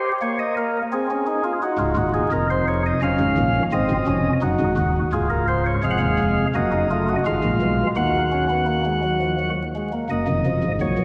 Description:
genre	classical, baroque-style 4-part fugue for pipe organ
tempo	85 BPM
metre	3/4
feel	straight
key	Db major, Eb minor from 5.8 s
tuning	A4 = 440 Hz
part	chamber organ, flutes	solo	0.0-11.0 s	Db1 to Gb5	-21 LUFS	equal	none
room	wet church reverb, RT60 2.7 s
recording	recorded in a church or concert hall, vinyl crackle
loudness	-21 LUFS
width	mono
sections	0.0-5.8 A section; 5.8-10.1 B section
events	none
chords	0.0 Eb7; 0.9 Ab/C; 1.6 Db; 3.0 Gbmaj9; 3.7 Ab7; 5.1 Db; 5.8 Ebsus24; 6.6 Gbm6; 7.3 Bb5/Ab; 8.0 Ebm

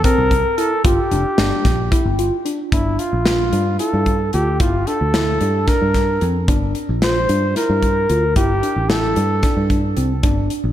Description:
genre	progressive instrumental, band music in an uneven meter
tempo	224 BPM (eighths)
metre	7/8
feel	straight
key	G dorian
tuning	A4 = 440 Hz
part	breathy trumpet	melody	0.0-9.7 s	E4 to C5	-20 LUFS	equal	slapback echo, tape echo
part	tine electric piano	arpeggios	0.0-10.5 s	C4 to F4	-23 LUFS	left 1 dB	slapback echo
part	modern studio drum kit	drums	0.0-10.6 s	hi-hat, kick drum, snare drum	-20 LUFS	equal	none
part	picked electric bass	bass	0.2-10.7 s	F1 to G2	-20 LUFS	equal	none
room	moderate lush hall reverb, RT60 2.0 s, small room ambience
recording	big arena sound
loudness	-15 LUFS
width	side -11 dB against mid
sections	0.0-2.7 A section; 2.7-10.7 B section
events	none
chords	0.0 C13; 0.8 Gm7; 4.6 Bbmaj7/G; 6.5 Gm7; 8.4 C69/G

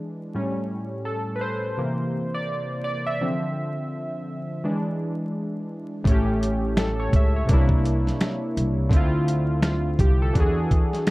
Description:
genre	lo-fi hip hop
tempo	84 BPM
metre	4/4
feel	swing 62% on 16ths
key	D minor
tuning	A4 = 439 Hz
part	warm analog keys	accompaniment	0.0-11.1 s	A2 to E5	-25 LUFS	equal	chorus, low-pass filter, plate reverb
part	upright bass	bass	6.1-10.7 s	A1 to E2	-24 LUFS	equal	none
part	dusty soul sampler-style drum kit	drums	6.1-11.1 s	finger snaps, hi-hat, kick drum, snare drum	-21 LUFS	equal	none
room	light reverb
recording	dark, warm production, vinyl crackle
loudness	-21 LUFS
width	side -20 dB against mid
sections	0.0-6.1 A section; 6.1-11.1 B section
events	synth keys solo 0.0-6.1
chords	0.3 A7; 1.8 C7; 3.2 Dm9; 4.6 E7; 6.1 A7; 7.5 C9; 8.9 Dm9; 10.3 E9

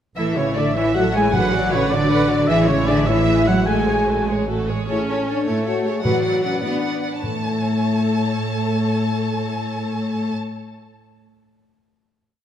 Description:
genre	cinematic, heroic adventure film score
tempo	103 BPM (dotted quarters)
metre	6/8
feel	straight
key	A major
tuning	A4 = 441 Hz
part	warm symphonic violin section	melody	0.2-10.3 s	A4 to A5	-28 LUFS	left 2 dB	none
part	mellow hollow silver concert flute	second line	0.2-4.3 s	C#5 to G#5	-26 LUFS	left 2 dB	none
part	warm oboe	second line	0.2-4.3 s	C#5 to G#5	-27 LUFS	right 2 dB	none
part	warm symphonic violin section	second line	0.2-10.3 s	A4 to G#5	-29 LUFS	left 1 dB	none
part	warm symphonic viola section	accompaniment	0.2-10.3 s	D3 to B4	-25 LUFS	right 2 dB	none
part	dark French horn section	sustained chords	0.2-10.3 s	A3 to G#4	-23 LUFS	left 4 dB	none
part	rich chamber double bass section	bass	0.2-4.6 s	A1	-25 LUFS	right 4 dB	none
part	rich symphonic cello section	bass	0.2-10.3 s	A2 to G#3	-23 LUFS	right 2 dB	none
part	timpani	percussion	1.3-1.9, 6.0-11.0 s	A2	-29 LUFS	equal	none
room	moderate scoring stage reverb, RT60 2.0 s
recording	none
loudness	-17 LUFS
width	side -10 dB against mid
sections	0.2-4.9 theme; 4.9-7.2 outro; 7.2-9.6 final chord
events	none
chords	0.2 A; 1.3 Bm/A; 2.5 C#m/A; 3.7 F#madd9/A; 4.9 A; 6.0 Bm/A; 7.2 A

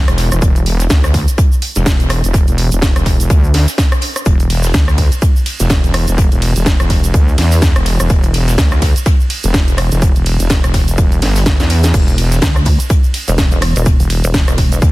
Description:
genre	bass house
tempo	125 BPM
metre	4/4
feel	swing 58% on 16ths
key	E minor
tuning	A4 = 440 Hz
part	wobble bass	bass	0.0-14.9 s	E1 to E2	-13 LUFS	equal	chorus, overdrive, sidechain pumping
part	house drum kit	drums	0.1-14.9 s	crash cymbal, hi-hat, ride cymbal, rim click, snare drum	-20 LUFS	right 1 dB	overdrive
part	egg shaker	percussion	0.1-14.9 s	none	-27 LUFS	right 4 dB	none
part	jazz brush drum kit	drums	0.2-14.9 s	hi-hat, snare drum	-29 LUFS	left 3 dB	high-pass filter on hats, soft clipping on snare, high-pass filter on snare, high-pass filter on room
part	electronic kick drum	drums	0.4-14.9 s	none	-12 LUFS	equal	overdrive
part	pulsing pluck wobble bass	bass	12.4-14.8 s	E1 to D2	-14 LUFS	equal	chorus, tube saturation, sidechain pumping
room	small room reverb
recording	dense, heavily limited modern master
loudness	-10 LUFS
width	side -19 dB against mid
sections	0.0-14.9 A section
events	drum fill 11.6-11.9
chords	none

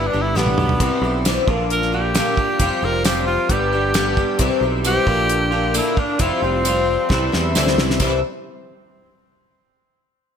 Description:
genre	folk rock and heartland rock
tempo	133 BPM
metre	4/4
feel	straight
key	C major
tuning	A4 = 439 Hz
part	breathy tenor saxophone	melody	0.0-7.3 s	B3 to Bb4	-22 LUFS	right 1 dB	ping-pong delay
part	picked twelve-string acoustic guitar	accompaniment	0.0-8.2 s	G2 to G4	-23 LUFS	left 8 dB	none
part	electric guitar through a small old amp	riff	0.0-8.2 s	G2 to G4	-24 LUFS	right 2 dB	analog chorus
part	picked electric bass	bass	0.0-8.2 s	F1 to E2	-23 LUFS	right 1 dB	none
part	damped 70s drum kit	drums	0.4-8.1 s	crash cymbal, hi-hat, kick drum, snare drum, toms	-21 LUFS	equal	gated reverb
part	mellow tonewheel organ	sustained chords	0.8-8.2 s	C4 to D6	-32 LUFS	right 1 dB	none
part	tambourine	percussion	1.3-8.2 s	none	-28 LUFS	right 15 dB	none
room	light reverb, small room ambience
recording	bright 1980s-style digital production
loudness	-16 LUFS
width	side -7 dB against mid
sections	0.0-8.0 A section; 8.0-9.8 B section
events	tenor saxophone solo 0.0-8.0; drum fill 0.4-0.8, 7.1-8.0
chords	0.0 G; 0.8 C; 1.5 Bb; 2.6 Fsus2; 3.5 G; 4.4 C; 5.1 Bb; 6.2 Fsus2; 7.1 C

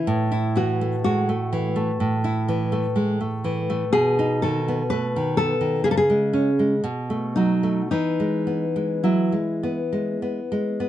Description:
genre	romantic duo for nylon-string guitar and classical guitar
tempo	51-65 BPM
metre	4/4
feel	rubato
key	E major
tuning	A4 = 441 Hz
part	nylon-string guitar	melody	0.0-10.9 s	D#4 to B4	-24 LUFS	left 2 dB	none
part	nylon-string guitar	accompaniment	0.0-10.9 s	A2 to E4	-22 LUFS	right 1 dB	none
room	light reverb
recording	nothing above 10.5 kHz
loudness	-20 LUFS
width	side -12 dB against mid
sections	0.0-10.9 A section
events	none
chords	0.1 F#m7/A; 3.9 B; 5.8 C#5; 6.8 B7; 7.9 E

